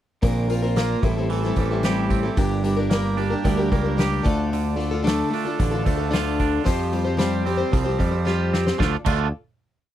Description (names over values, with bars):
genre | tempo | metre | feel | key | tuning
folk rock and heartland rock | 112 BPM | 4/4 | straight | D minor | A4 = 440 Hz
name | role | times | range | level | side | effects
picked plugged-in twelve-string acoustic guitar | accompaniment | 0.2-9.3 s | A2 to C5 | -25 LUFS | left 4 dB | none
twangy electric guitar | riff | 0.2-9.3 s | G2 to G4 | -27 LUFS | right 11 dB | none
picked electric bass | bass | 0.2-9.3 s | G1 to F2 | -24 LUFS | equal | none
unplugged drum kit | drums | 0.2-9.2 s | crash cymbal, hi-hat, kick drum, snare drum | -24 LUFS | equal | none
room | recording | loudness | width
little or no reverb | dry, close 1970s-style studio recording | -20 LUFS | side -12 dB against mid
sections
0.2-8.8 verse; 8.8-9.9 final chord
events
drum fill 8.3-8.8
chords
0.2 Bbadd9; 1.0 Am7; 2.4 Gm; 4.2 Dm; 6.7 Fsus2; 8.8 Dm